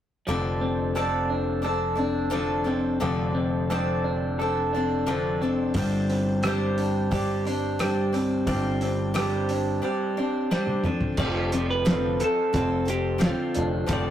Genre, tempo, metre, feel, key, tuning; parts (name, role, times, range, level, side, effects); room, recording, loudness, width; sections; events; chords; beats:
folk rock and heartland rock; 88 BPM; 4/4; straight; A4 = 439 Hz
picked steel-string acoustic guitar; accompaniment; 0.3-14.1 s; D3 to D5; -28 LUFS; left 2 dB
electric guitar through a small old amp; riff; 0.3-14.1 s; G2 to A4; -27 LUFS; equal
picked electric bass; bass; 0.3-14.1 s; F1 to G1; -29 LUFS; equal
cloth-damped thuddy drum kit; drums; 5.7-14.1 s; crash cymbal, hi-hat, kick drum, rim click, snare drum, toms; -28 LUFS; equal
clean electric guitar; melody; 11.2-14.1 s; F4 to D5; -28 LUFS; right 2 dB
moderate small room reverb, RT60 0.5 s; rough rehearsal-room recording, tube saturation; -23 LUFS; side -10 dB against mid
0.3-11.2 A section; 11.2-14.1 B section
drum fill 10.5-11.2
0.3 F6; 5.8 Gsus4; 10.9 F6
| 0.28 0.97 1.65 2.34 | 3.02 3.71 4.39 5.08 | 5.76 6.44 7.12 7.80 | 8.48 9.16 9.84 10.52 | 11.20 11.88 12.56 13.23 | 13.91